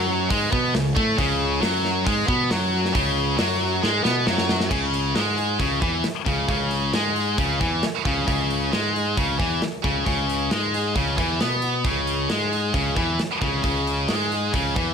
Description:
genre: hard rock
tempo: 134 BPM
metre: 4/4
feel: straight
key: C# minor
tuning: A4 = 440 Hz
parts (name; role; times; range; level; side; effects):
- heavy high-gain guitar; riff; 0.0-14.9 s; C#3 to B3; -25 LUFS; right 17 dB; distortion
- high-gain distorted guitar; riff; 0.0-14.9 s; C#3 to B3; -25 LUFS; left 14 dB; distortion
- fuzz fingered electric bass; bass; 0.0-14.9 s; C#2 to B2; -26 LUFS; right 1 dB; overdrive
- tight metal drum kit; drums; 0.3-14.9 s; crash cymbal, hi-hat, kick drum, snare drum; -27 LUFS; equal; none
room: light reverb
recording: none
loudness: -20 LUFS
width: side -6 dB against mid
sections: 0.0-4.7 A section; 4.7-14.9 B section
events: drum fill 3.8-4.7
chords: 0.0 C#5; 4.7 C#m

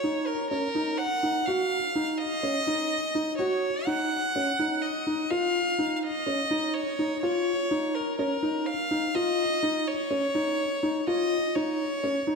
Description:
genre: electronica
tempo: 125 BPM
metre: 4/4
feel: straight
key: Eb minor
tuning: A4 = 443 Hz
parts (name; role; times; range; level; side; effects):
- rich violin; melody; 0.0-12.4 s; Bb4 to Gb5; -28 LUFS; equal; diffuse ambient delay
- felt-muted upright piano; riff; 0.0-12.4 s; Db4 to Gb4; -27 LUFS; equal; diffuse ambient delay
room: wet plate reverb, RT60 2.5 s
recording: dreamy mix soaked in reverb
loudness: -25 LUFS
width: side -4 dB against mid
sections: 0.0-12.4 A section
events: none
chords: 0.0 Ebm; 5.3 Bbm (rootless)

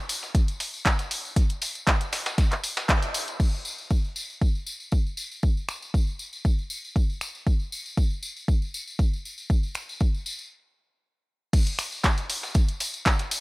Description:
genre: house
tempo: 118 BPM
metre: 4/4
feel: swing 53% on 16ths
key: none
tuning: none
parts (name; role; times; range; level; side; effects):
- dusty soul sampler-style drum kit; drums; 0.1-3.4, 11.5-13.4 s; hi-hat, snare drum; -34 LUFS; equal; sidechain pumping on hats, high-pass filter on hats, high-pass filter on snare, high-pass filter on room
- punchy analog drum machine; drums; 0.1-13.4 s; crash cymbal, finger snaps, handclaps, hi-hat; -28 LUFS; equal; none
- tambourine; percussion; 0.1-13.4 s; none; -35 LUFS; left 2 dB; none
- electronic kick drum; drums; 0.3-13.2 s; none; -22 LUFS; equal; overdrive
room: little or no reverb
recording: dry, gritty hardware recording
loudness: -24 LUFS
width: side -23 dB against mid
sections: 0.0-3.4 A section; 3.4-11.5 B section; 11.5-13.4 C section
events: band accent 2.9; stop 10.5-11.5; drop 11.5-13.4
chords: none

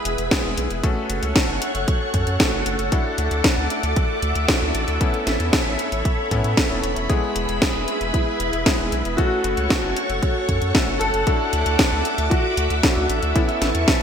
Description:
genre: italo disco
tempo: 115 BPM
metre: 4/4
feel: straight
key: unclear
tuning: A4 = 440 Hz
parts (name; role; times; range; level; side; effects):
- string machine, full ensemble; sustained chords; 0.0-14.0 s; G#4 to D6; -25 LUFS; equal; ensemble chorus
- clear electric grand piano; stabs; 0.0-14.0 s; G#3 to A4; -28 LUFS; left 4 dB; vintage 12-bit sampler grit, ping-pong delay
- round analog bass; bass; 0.1-13.9 s; E1 to A2; -25 LUFS; equal; tube saturation
- house drum kit; drums; 0.1-14.0 s; hi-hat, snare drum; -22 LUFS; equal; gated reverb
- electronic kick drum; drums; 0.3-14.0 s; none; -22 LUFS; equal; none
- warm concert grand piano; melody; 8.1-14.0 s; E4 to A4; -25 LUFS; equal; ensemble chorus, digital delay
room: moderate plate reverb, RT60 2.2 s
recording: bright 1980s-style digital production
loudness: -18 LUFS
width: side -8 dB against mid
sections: 0.0-14.0 A section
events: none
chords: 0.0 E; 0.8 F#m; 2.9 Dadd9; 5.0 Aadd9; 7.1 E; 9.2 F#m; 11.3 Dadd9; 13.4 Aadd9

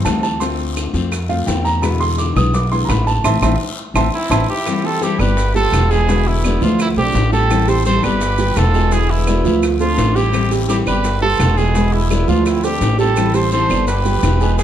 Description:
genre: latin, Cuban son and guajira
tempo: 169 BPM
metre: 4/4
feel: straight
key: A minor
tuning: A4 = 440 Hz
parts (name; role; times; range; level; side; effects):
- nylon-string guitar; accompaniment; 0.0-14.6 s; B2 to F4; -22 LUFS; left 6 dB; none
- dark grand piano; arpeggios; 0.0-14.6 s; F3 to D#6; -21 LUFS; right 6 dB; none
- upright bass; bass; 0.1-14.6 s; E1 to F2; -17 LUFS; equal; none
- bongos; percussion; 0.1-14.6 s; none; -27 LUFS; left 6 dB; none
- claves; percussion; 0.1-14.4 s; none; -30 LUFS; right 4 dB; none
- guiro; percussion; 0.1-14.6 s; none; -32 LUFS; left 6 dB; none
- maracas; percussion; 0.1-14.6 s; none; -34 LUFS; right 6 dB; none
- warm trumpet; melody; 4.1-14.6 s; E4 to C5; -20 LUFS; right 3 dB; none
- clear chamber violin section; second line; 4.1-14.6 s; B3 to A4; -29 LUFS; left 1 dB; none
room: moderate large studio reverb, RT60 1.2 s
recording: dark, warm production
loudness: -14 LUFS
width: side -10 dB against mid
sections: 0.0-4.7 A section; 4.7-14.6 B section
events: grand piano solo 0.0-4.7; band accent 3.2-4.7; drum fill 3.6-4.7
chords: 0.4 Dm7; 1.8 E7; 3.2 Am; 4.7 Am11; 5.4 G7; 6.1 E7b9; 6.8 Dm7; 7.5 Am7; 8.2 G7; 8.9 E7b9; 9.6 Dm7; 10.3 Am7; 11.0 G7; 11.8 E7b9; 12.5 Dm7; 13.2 Am7; 13.9 G7

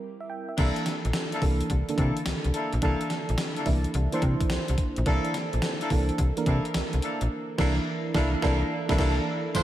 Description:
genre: R&B, new jack swing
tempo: 107 BPM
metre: 4/4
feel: swing 67% on 16ths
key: unclear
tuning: A4 = 439 Hz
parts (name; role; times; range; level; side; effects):
- FM electric piano with tremolo; accompaniment; 0.0-9.6 s; D3 to G5; -30 LUFS; right 2 dB; none
- mellow horn section; stabs; 0.6-9.6 s; Bb3 to C5; -33 LUFS; left 1 dB; tape echo
- slap-like FM bass; bass; 0.6-9.6 s; Bb1 to C3; -26 LUFS; equal; none
- gated 80s digital drum machine; drums; 0.6-9.6 s; crash cymbal, hi-hat, kick drum, snare drum, tambourine; -30 LUFS; equal; gated reverb, gated reverb snare, overdrive
room: moderate lush hall reverb, RT60 2.6 s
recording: dreamy mix soaked in reverb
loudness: -24 LUFS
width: side -13 dB against mid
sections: 0.6-9.5 A section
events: break 0.0-0.6; band accent 7.3-9.5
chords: 0.0 C7; 0.6 C13

